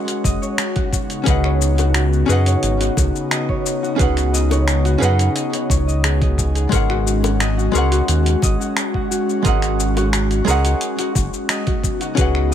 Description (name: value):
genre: sunset chillout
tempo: 88 BPM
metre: 4/4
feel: straight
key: G# minor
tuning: A4 = 440 Hz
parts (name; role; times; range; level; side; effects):
- archtop guitar, miked and amplified; accompaniment; 0.0-12.5 s; G#3 to F#5; -23 LUFS; moving between left 10 dB and right 9 dB; auto-pan, digital delay
- airy breathy pad; sustained chords; 0.0-12.5 s; C#3 to F#4; -24 LUFS; left 1 dB; chorus
- concert harp; arpeggios; 0.0-12.5 s; F#4 to G#5; -26 LUFS; left 1 dB; digital delay
- dusty soul sampler-style drum kit; drums; 0.1-12.5 s; finger snaps, hi-hat, shaker; -24 LUFS; left 2 dB; overdrive
- round analog bass; bass; 0.2-12.5 s; F#1 to F#2; -18 LUFS; equal; none
- electronic kick drum; drums; 0.2-12.3 s; none; -20 LUFS; equal; overdrive
- bongos; percussion; 1.8-10.1 s; none; -27 LUFS; left 7 dB; none
room: light reverb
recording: none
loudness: -16 LUFS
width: side -10 dB against mid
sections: 0.0-12.5 A section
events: none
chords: 0.0 G#9sus4; 0.9 C#9sus4; 6.7 G#9sus4; 11.8 C#9sus4